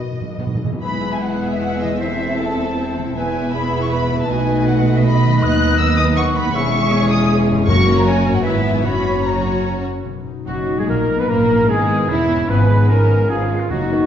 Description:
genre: classical, dramatic, fast romantic movement for symphony orchestra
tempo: 136-162 BPM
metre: 3/4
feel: rubato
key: E major, B major from 5.4 s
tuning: A4 = 440 Hz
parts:
  - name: dark symphonic violin section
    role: melody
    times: 0.0-14.1 s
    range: E4 to F#6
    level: -26 LUFS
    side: left 1 dB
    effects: none
  - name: warm symphonic violin section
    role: second line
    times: 0.0-14.1 s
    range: G#3 to E5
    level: -28 LUFS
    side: left 2 dB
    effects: none
  - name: rich symphonic viola section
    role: accompaniment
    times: 0.0-14.1 s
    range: C#3 to G#4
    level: -26 LUFS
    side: equal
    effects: none
  - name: concert harp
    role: arpeggios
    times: 0.0-14.1 s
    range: F#2 to B4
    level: -25 LUFS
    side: left 6 dB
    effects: none
  - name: timpani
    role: percussion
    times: 0.0-0.8, 7.7-10.6, 13.7-14.1 s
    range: F#2 to B2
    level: -24 LUFS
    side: equal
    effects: none
  - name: concert flute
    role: second line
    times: 0.8-14.1 s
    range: E4 to F#6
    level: -26 LUFS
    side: left 1 dB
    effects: none
  - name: warm clarinet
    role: second line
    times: 0.8-14.1 s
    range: B3 to F#5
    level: -27 LUFS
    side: equal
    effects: none
  - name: dark French horn section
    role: sustained chords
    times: 0.8-14.1 s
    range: G#3 to F#4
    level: -23 LUFS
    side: left 3 dB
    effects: none
  - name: rich symphonic cello section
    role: bass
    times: 0.8-14.1 s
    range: D#2 to B2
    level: -24 LUFS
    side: right 3 dB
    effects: none
  - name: warm symphonic double bass section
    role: bass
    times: 0.8-14.1 s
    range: E1 to D#2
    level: -21 LUFS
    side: right 4 dB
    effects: none
  - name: clear oboe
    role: second line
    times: 10.5-14.1 s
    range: E4 to B4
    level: -29 LUFS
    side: right 1 dB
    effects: none
  - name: bright trumpet section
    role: stabs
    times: 10.5-14.1 s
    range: E4 to B4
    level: -21 LUFS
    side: equal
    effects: none
room: wet recital hall reverb, RT60 1.4 s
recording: dark, warm production, nothing above 7.6 kHz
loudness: -15 LUFS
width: side -9 dB against mid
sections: 0.8-10.1 A section; 10.1-14.1 B section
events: timpani fill 0.0-0.8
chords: 0.0 B; 0.8 E; 2.0 Am/E; 3.2 E; 4.3 B7; 5.4 B/D#; 6.5 C#m/E; 7.7 F#; 8.4 E/G#; 8.8 F#; 10.1 B; 11.3 E; 12.5 C#7/G#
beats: 0.40 | 0.83 1.23 1.62 | 2.01 2.40 2.78 | 3.16 3.54 3.92 | 4.29 4.67 5.05 | 5.42 5.79 6.17 | 6.55 6.92 7.30 | 7.68 8.06 8.45 | 8.85 9.25 9.65 | 10.05 10.48 10.89 | 11.29 11.69 12.09 | 12.49 12.89 13.29 | 13.71

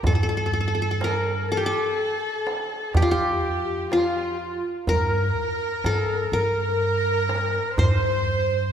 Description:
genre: Turkish makam ensemble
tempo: 124 BPM (eighths)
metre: 10/8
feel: straight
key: G makam ussak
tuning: A4 = 440 Hz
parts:
  - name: qanun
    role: melody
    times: 0.0-8.7 s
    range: F4 to C5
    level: -25 LUFS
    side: left 1 dB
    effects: none
  - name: breathy bright ney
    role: second line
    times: 0.0-8.7 s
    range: F4 to C5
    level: -30 LUFS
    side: left 2 dB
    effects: none
  - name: warm studio violin section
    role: second line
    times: 0.0-8.7 s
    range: F4 to C5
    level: -28 LUFS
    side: right 1 dB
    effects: none
  - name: upright bass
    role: bass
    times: 0.0-8.7 s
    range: F2 to G2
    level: -27 LUFS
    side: right 1 dB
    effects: none
  - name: darbuka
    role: percussion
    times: 0.0-8.0 s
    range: none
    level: -27 LUFS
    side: right 2 dB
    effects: none
room: moderate scoring stage reverb, RT60 1.9 s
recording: recorded in a church or concert hall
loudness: -21 LUFS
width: side -8 dB against mid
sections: 0.0-8.7 A section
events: none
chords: none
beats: | 0.04 0.53 1.01 1.49 1.98 2.46 2.94 3.43 3.91 4.39 | 4.88 5.36 5.85 6.33 6.81 7.30 7.78 8.27

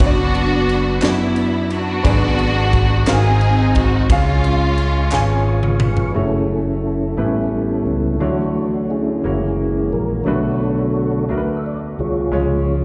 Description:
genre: slow gospel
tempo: 58 BPM (dotted quarters)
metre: 6/8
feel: straight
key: F# minor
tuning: A4 = 441 Hz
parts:
  - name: rich studio string section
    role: melody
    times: 0.0-5.8 s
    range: G#3 to G#4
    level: -22 LUFS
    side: equal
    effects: none
  - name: bright grand piano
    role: accompaniment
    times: 0.0-12.8 s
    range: G#2 to G#5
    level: -26 LUFS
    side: equal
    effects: slapback echo
  - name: mellow tonewheel organ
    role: sustained chords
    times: 0.0-12.8 s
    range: D3 to C#6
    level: -24 LUFS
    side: equal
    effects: fast rotary speaker, chorus vibrato
  - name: fingered electric bass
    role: bass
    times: 0.0-12.8 s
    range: F#1 to F#2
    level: -22 LUFS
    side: equal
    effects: none
  - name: crisp fusion drum kit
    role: drums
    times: 0.0-6.1 s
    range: kick drum, ride cymbal, snare drum, toms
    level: -22 LUFS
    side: equal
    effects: none
  - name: group handclap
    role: percussion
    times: 1.0-5.4 s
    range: none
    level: -31 LUFS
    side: equal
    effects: none
  - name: mellow French horn section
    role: sustained chords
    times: 6.1-12.8 s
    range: D3 to C#5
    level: -36 LUFS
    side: equal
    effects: none
room: light reverb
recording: live gig heard through the venue's PA, recital hall reverb, nothing above 10.7 kHz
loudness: -18 LUFS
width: mono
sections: 0.0-6.1 A section; 6.1-12.8 B section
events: drum fill 5.1-6.1; tonewheel organ solo 6.1-12.8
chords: 0.0 Bm/F#; 2.0 G#dim; 3.1 G#13; 4.1 C#; 6.1 F#m7; 7.2 A9; 8.2 Dmaj7; 9.2 F#7; 10.3 Bm7; 12.3 C#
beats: | 0.00 1.02 | 2.05 3.07 | 4.09 5.12 | 6.15 7.17 | 8.21 9.24 | 10.27 11.30 | 12.33

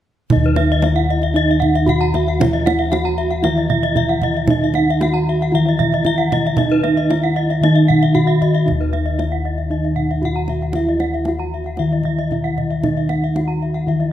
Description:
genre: Balinese gamelan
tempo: 115 BPM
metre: 4/4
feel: straight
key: unclear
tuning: A4 = 440 Hz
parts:
  - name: gamelan-type bronze metallophone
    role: melody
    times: 0.3-14.1 s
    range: Eb4 to Gb4-30c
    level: -21 LUFS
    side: right 2 dB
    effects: none
  - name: gamelan-type bronze metallophone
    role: accompaniment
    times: 0.3-14.1 s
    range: Eb3 to Fb3+20c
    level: -23 LUFS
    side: right 1 dB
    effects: none
  - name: gamelan-type bronze metallophone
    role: arpeggios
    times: 0.3-14.1 s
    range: Cb5-20c to Gb5-30c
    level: -23 LUFS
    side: left 5 dB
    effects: slapback echo
  - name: gamelan-type bossed gongs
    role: bass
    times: 0.3-14.1 s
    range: Eb2 to Fb4+20c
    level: -20 LUFS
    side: left 2 dB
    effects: none
  - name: kendang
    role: percussion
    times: 0.3-14.1 s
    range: none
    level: -23 LUFS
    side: right 3 dB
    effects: none
  - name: gamelan-type bronze metallophone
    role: arpeggios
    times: 0.6-13.6 s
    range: Fb5+20c to Bb5-30c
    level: -26 LUFS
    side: right 6 dB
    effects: none
room: wet recital hall reverb, RT60 1.6 s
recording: none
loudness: -15 LUFS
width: side -11 dB against mid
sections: 0.3-14.1 A section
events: none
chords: none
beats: | 0.32 0.84 1.36 1.88 | 2.40 2.92 3.45 3.97 | 4.49 5.01 5.53 6.05 | 6.58 7.10 7.62 8.14 | 8.66 9.19 9.71 10.23 | 10.75 11.27 11.79 12.32 | 12.84 13.36 13.87

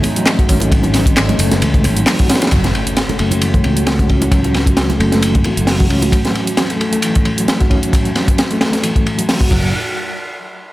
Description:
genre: breakbeat, breaks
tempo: 133 BPM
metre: 4/4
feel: swing 55% on 16ths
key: unclear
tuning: A4 = 440 Hz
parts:
  - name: dark analog pad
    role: sustained chords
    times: 0.0-9.7 s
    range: A3 to F#4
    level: -24 LUFS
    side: right 1 dB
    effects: chorus, sidechain pumping
  - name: mellow reed electric piano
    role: riff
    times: 0.0-9.8 s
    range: E3 to F#4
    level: -18 LUFS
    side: equal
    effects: fast tremolo, overdrive, low-pass filter, tape echo
  - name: crunchy breakbeat drum kit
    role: drums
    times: 0.0-9.6 s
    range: crash cymbal, hi-hat, kick drum, ride cymbal, snare drum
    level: -15 LUFS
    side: equal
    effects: none
  - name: punchy analog drum machine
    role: drums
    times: 0.0-9.5 s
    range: handclaps, hi-hat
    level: -22 LUFS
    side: right 1 dB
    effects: overdrive
  - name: congas and bongos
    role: percussion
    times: 0.0-6.1 s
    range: none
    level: -24 LUFS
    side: right 2 dB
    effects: none
  - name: fingered electric bass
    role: bass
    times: 0.5-6.1, 9.5-9.7 s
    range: F#1 to C#2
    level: -17 LUFS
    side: equal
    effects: none
  - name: impact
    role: sound effects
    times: 2.5-4.3 s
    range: none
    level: -24 LUFS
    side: equal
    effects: none
room: little or no reverb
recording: none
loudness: -12 LUFS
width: side -17 dB against mid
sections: 0.0-2.5 A section; 2.5-9.7 B section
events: drop 0.0-2.5; impact 2.5-4.3; filter sweep on analog synth pad 2.5-9.7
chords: 0.0 F#m; 9.7 N.C.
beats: 0.27 | 0.72 1.17 1.62 2.07 | 2.52 2.97 3.42 3.87 | 4.33 4.78 5.23 5.68 | 6.13 6.58 7.03 7.48 | 7.93 8.38 8.84 9.29 | 9.74

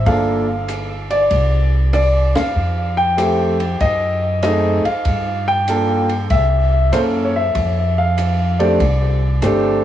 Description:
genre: jazz piano trio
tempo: 96 BPM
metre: 4/4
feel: swing 68% on 8ths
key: F major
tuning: A4 = 440 Hz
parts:
  - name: warm baby grand piano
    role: melody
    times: 0.0-9.8 s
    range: A3 to G5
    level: -17 LUFS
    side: equal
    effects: cassette tape, analog delay
  - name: upright bass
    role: bass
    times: 0.1-9.8 s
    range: G1 to G2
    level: -18 LUFS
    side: equal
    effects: none
  - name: compact cocktail drum kit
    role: drums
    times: 0.1-9.6 s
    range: hi-hat, kick drum, ride cymbal, rim click, snare drum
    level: -26 LUFS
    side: right 1 dB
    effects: vintage 12-bit sampler grit, cassette tape
room: light reverb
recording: home recording on cassette, small room ambience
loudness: -14 LUFS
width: side -11 dB against mid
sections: 0.0-9.8 A section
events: band accent 2.2-2.6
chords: 0.1 Gm7; 1.3 Cadd9; 2.6 Fmaj9; 3.8 F#dim7; 5.1 Gm7; 6.3 C7b9; 7.5 F6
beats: | 0.06 0.69 1.31 1.93 | 2.56 3.18 3.81 4.43 | 5.05 5.68 6.30 6.93 | 7.55 8.17 8.80 9.42

